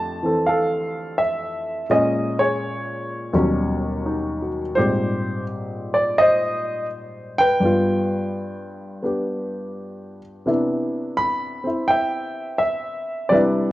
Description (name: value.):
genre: solo jazz.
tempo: 84 BPM.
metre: 4/4.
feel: swing 67% on 8ths.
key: C major.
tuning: A4 = 439 Hz.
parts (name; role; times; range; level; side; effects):
warm baby grand piano; solo; 0.0-13.7 s; Eb2 to B5; -20 LUFS; equal; none.
room: moderate echo chamber reverb, RT60 2.0 s.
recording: worn, warbling old tape, cassette tape, warbly pitch drift.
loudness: -20 LUFS.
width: side -16 dB against mid.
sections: 0.0-13.7 A section.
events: none.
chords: 0.0 F69; 1.9 Bbm7; 3.3 Eb7alt; 4.8 Abmaj9; 7.6 G7; 10.5 Cmaj9.